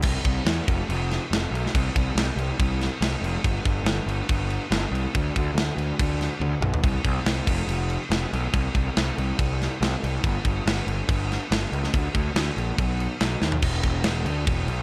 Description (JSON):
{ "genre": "heavy metal", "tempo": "141 BPM", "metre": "4/4", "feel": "straight", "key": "unclear", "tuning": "A4 = 439 Hz", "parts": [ { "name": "fuzz picked electric bass", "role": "bass", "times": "0.0-14.8 s", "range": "E1 to E2", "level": "-28 LUFS", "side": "equal", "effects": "overdrive" }, { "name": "tight metal drum kit", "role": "drums", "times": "0.0-14.8 s", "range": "crash cymbal, kick drum, snare drum, toms", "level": "-28 LUFS", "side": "equal", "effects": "none" } ], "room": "little or no reverb", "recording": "none", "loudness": "-25 LUFS", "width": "mono", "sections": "0.0-13.6 A section; 13.6-14.8 B section", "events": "drum fill 6.4-6.8, 13.4", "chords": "none", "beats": "| 0.04 0.47 0.89 1.31 | 1.74 2.16 2.59 3.01 | 3.44 3.86 4.29 4.71 | 5.13 5.56 5.98 6.41 | 6.83 7.26 7.68 8.11 | 8.53 8.96 9.38 9.80 | 10.23 10.65 11.08 11.50 | 11.93 12.35 12.78 13.20 | 13.63 14.05 14.48" }